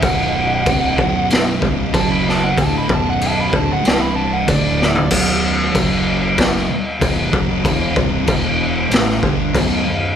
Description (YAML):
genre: stoner and doom metal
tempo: 95 BPM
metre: 4/4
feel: straight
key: B minor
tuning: A4 = 439 Hz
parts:
  - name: fuzz lead guitar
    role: melody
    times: 0.0-5.1 s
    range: D5 to B5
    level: -21 LUFS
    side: right 3 dB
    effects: distortion
  - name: thick fuzz guitar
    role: riff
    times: 0.0-10.1 s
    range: B1 to A3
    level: -23 LUFS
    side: left 8 dB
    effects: distortion
  - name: thick fuzz guitar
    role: riff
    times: 0.0-10.1 s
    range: B1 to A3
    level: -21 LUFS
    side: right 7 dB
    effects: distortion
  - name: growling picked electric bass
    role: bass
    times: 0.0-10.1 s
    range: B0 to A1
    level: -26 LUFS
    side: left 1 dB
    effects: overdrive
  - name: raw garage drum kit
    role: drums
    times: 0.0-9.7 s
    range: crash cymbal, kick drum, snare drum, toms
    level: -17 LUFS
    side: left 1 dB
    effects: none
room: light reverb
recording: band playing live in one room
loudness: -14 LUFS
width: side -8 dB against mid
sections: 0.0-5.1 A section; 5.1-10.2 B section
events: lead electric guitar solo 0.0-5.1; drum fill 4.8-5.1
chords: 0.0 B5; 1.9 F#5; 2.6 Bm; 3.8 C5; 4.5 D5; 5.1 B5; 5.7 F#5; 6.7 B5; 8.3 E5; 8.9 Bm